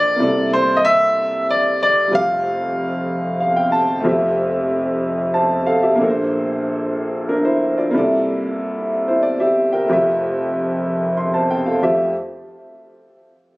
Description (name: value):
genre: gospel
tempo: 62 BPM (dotted quarters)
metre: 6/8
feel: straight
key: F major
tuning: A4 = 441 Hz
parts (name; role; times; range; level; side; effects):
- clear baby grand piano; melody; 0.0-3.7 s; C5 to F5; -16 LUFS; equal; none
- clear upright piano; accompaniment; 0.0-12.1 s; F1 to C6; -17 LUFS; equal; none
room: light reverb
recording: recorded on a phone in the room, club reverb, compression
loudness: -16 LUFS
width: side -21 dB against mid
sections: 0.0-4.1 A section; 4.1-11.8 B section; 11.8-13.6 C section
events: upright piano fill 3.1-4.1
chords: 0.2 C13; 2.1 Fadd9; 4.1 Fmaj9; 6.0 Bbmaj9; 7.9 C13; 9.9 Fmaj9